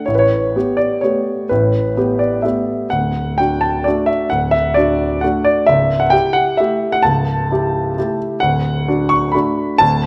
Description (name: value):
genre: classical, piano waltz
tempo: 129 BPM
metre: 3/4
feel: rubato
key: D major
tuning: A4 = 440 Hz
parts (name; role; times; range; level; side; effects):
- clear grand piano; solo; 0.0-10.1 s; C#1 to C#6; -16 LUFS; equal; none
room: moderate recital hall reverb, RT60 1.8 s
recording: none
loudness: -16 LUFS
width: mono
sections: 0.0-10.1 A section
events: none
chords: 0.1 A9; 2.9 D; 5.7 A7/C#; 8.4 D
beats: | 0.08 0.55 1.03 | 1.51 1.97 2.44 | 2.92 3.39 3.86 | 4.31 4.76 5.23 | 5.69 6.13 6.59 | 7.05 7.50 7.97 | 8.42 8.88 9.34 | 9.80